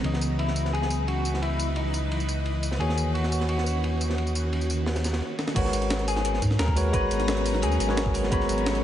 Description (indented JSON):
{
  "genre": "liquid drum and bass",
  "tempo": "174 BPM",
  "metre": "4/4",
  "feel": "straight",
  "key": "G# minor",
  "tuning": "A4 = 442 Hz",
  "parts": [
    { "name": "tine electric piano", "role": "accompaniment", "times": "0.0-8.8 s", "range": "C#3 to A#5", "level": "-29 LUFS", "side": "equal", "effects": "tape echo" },
    { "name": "shimmering ambient pad", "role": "sustained chords", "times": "0.0-8.8 s", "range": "D#3 to A#5", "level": "-34 LUFS", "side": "equal", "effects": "chorus, built-in reverb, phaser, sidechain pumping" },
    { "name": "warm sub bass", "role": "bass", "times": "0.0-8.8 s", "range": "G#1 to G#2", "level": "-28 LUFS", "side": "equal", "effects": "none" },
    { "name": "crunchy breakbeat drum kit", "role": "drums", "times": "0.0-8.8 s", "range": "ride cymbal, snare drum", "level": "-36 LUFS", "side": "right 1 dB", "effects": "high-pass filter on cymbals, high-pass filter on snare, high-pass filter on room, analog delay" },
    { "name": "breakbeat sampler-style drum kit", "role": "drums", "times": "0.2-8.8 s", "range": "crash cymbal, hi-hat, snare drum, tambourine", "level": "-32 LUFS", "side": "equal", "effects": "analog delay" },
    { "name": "clean electric guitar", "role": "melody", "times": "0.4-8.8 s", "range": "D#4 to B4", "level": "-32 LUFS", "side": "left 2 dB", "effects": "vibrato effect, tape echo" },
    { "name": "electronic kick drum", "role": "drums", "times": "5.6-8.4 s", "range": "none", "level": "-28 LUFS", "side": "equal", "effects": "none" }
  ],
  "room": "light reverb, digital ambience",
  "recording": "echo-heavy mix, nothing above 11.0 kHz",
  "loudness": "-23 LUFS",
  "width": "side -11 dB against mid",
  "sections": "0.0-5.6 A section; 5.6-8.8 B section",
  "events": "filter sweep on tine electric piano 0.0-5.6; stop 5.2-5.6; drum fill 5.4; drop 5.6-8.8",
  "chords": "0.0 C#m9; 2.8 D#m7; 5.6 G#m11"
}